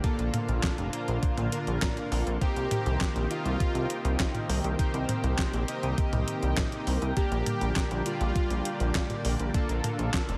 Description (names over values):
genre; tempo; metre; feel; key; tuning
synthwave; 101 BPM; 4/4; straight; C dorian; A4 = 440 Hz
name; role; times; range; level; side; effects
analog string pad; sustained chords; 0.0-10.4 s; D3 to A4; -37 LUFS; equal; ensemble chorus, sidechain pumping, shimmer reverb
chorused polysynth; stabs; 0.0-10.4 s; Bb2 to Eb5; -38 LUFS; equal; cassette tape, digital delay, shimmer reverb
clean 12-bit digital drum machine; drums; 0.0-10.4 s; handclaps, hi-hat, snare drum, toms; -35 LUFS; equal; gated reverb
electronic kick drum; drums; 0.0-10.3 s; none; -31 LUFS; equal; none
chorused synth bass; bass; 0.2-10.4 s; F1 to C2; -31 LUFS; equal; none
soft supersaw; melody; 2.4-9.1 s; F4 to G4; -39 LUFS; equal; delay, shimmer reverb
room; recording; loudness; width
light reverb; none; -29 LUFS; mono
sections
0.0-10.4 A section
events
none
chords
0.0 Bbmaj7; 2.4 Cm7; 7.2 Gm/Bb; 9.5 Bbmaj7